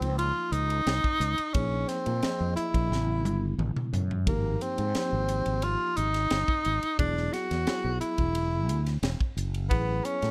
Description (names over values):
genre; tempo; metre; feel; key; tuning
electric jazz fusion; 88 BPM; 4/4; straight; unclear; A4 = 441 Hz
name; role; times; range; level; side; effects
breathy tenor saxophone; melody; 0.0-10.3 s; Bb3 to F#4; -31 LUFS; equal; slapback echo
mellow tine electric piano; accompaniment; 0.0-10.3 s; C#3 to Eb5; -39 LUFS; equal; none
fretless electric bass; bass; 0.0-10.3 s; E1 to Bb2; -32 LUFS; equal; none
crisp fusion drum kit; drums; 0.0-10.3 s; hi-hat, kick drum, ride cymbal, snare drum, toms; -34 LUFS; equal; none
room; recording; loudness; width
little or no reverb; dark, warm production; -28 LUFS; mono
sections
0.0-10.3 A section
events
drum fill 2.9-4.3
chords
0.0 Db; 1.6 Bbsus2; 2.9 A7; 4.3 Abmaj9; 7.0 Eadd9; 9.7 Amaj9